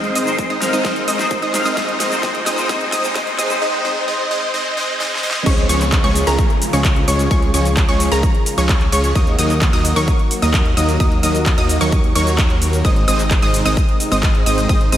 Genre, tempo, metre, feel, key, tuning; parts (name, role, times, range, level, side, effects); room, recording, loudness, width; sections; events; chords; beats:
EDM, festival progressive house; 130 BPM; 4/4; straight; Db major; A4 = 439 Hz
clean electric guitar; accompaniment; 0.0-3.6 s; Ab2 to F5; -23 LUFS; left 1 dB; ensemble chorus, sidechain pumping, tape echo
lush unison pad; sustained chords; 0.0-15.0 s; C3 to C5; -26 LUFS; equal; chorus, sidechain pumping
wide unison pluck; arpeggios; 0.0-15.0 s; Bb5 to Eb6; -23 LUFS; equal; sidechain pumping, tape echo
supersaw stab; riff; 0.0-15.0 s; F3 to Eb5; -20 LUFS; equal; sidechain pumping, tape echo
big-room dance drum kit; drums; 0.0-15.0 s; crash cymbal, handclaps, hi-hat, shaker, snare drum; -24 LUFS; equal; overdrive, studio reverb
riser and downlifter; sound effects; 0.2-9.2 s; -30 LUFS; right 1 dB
electronic kick drum; drums; 0.4-14.8 s; -17 LUFS; equal; overdrive, studio reverb
fat analog bass; bass; 5.5-15.0 s; Ab1 to Eb2; -19 LUFS; equal; sidechain pumping
moderate lush hall reverb, RT60 2.1 s; dreamy mix soaked in reverb, high-pass filter; -14 LUFS; side -11 dB against mid
0.0-5.5 A section; 5.5-15.0 B section
build-up 0.0-5.5; drum fill 0.0-3.6, 5.0-5.5; filter sweep on supersaw synth 0.0-5.5; drop 5.5-15.0
0.0 Ab; 5.5 Db; 9.2 Ebm; 12.8 Ab
0.39 0.85 1.31 | 1.77 2.23 2.69 3.15 | 3.62 4.08 4.54 5.00 | 5.46 5.92 6.39 6.85 | 7.31 7.77 8.23 8.69 | 9.15 9.62 10.08 10.54 | 11.00 11.46 11.92 12.39 | 12.85 13.31 13.77 14.23 | 14.69